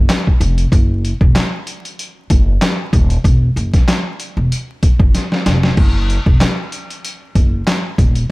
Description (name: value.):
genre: hip hop, boom-bap hip-hop.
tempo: 95 BPM.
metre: 4/4.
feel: swing 55% on 16ths.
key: unclear.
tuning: A4 = 440 Hz.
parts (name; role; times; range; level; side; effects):
upright bass; bass; 0.0-8.2 s; D#1 to F#1; -16 LUFS; equal; none.
trip hop sampler-style drum kit; drums; 0.1-8.3 s; crash cymbal, handclaps, hi-hat, kick drum, snare drum; -14 LUFS; equal; none.
room: little or no reverb.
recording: vinyl crackle.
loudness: -12 LUFS.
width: side -22 dB against mid.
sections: 0.0-8.3 A section.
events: drum fill 5.1-5.8.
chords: none.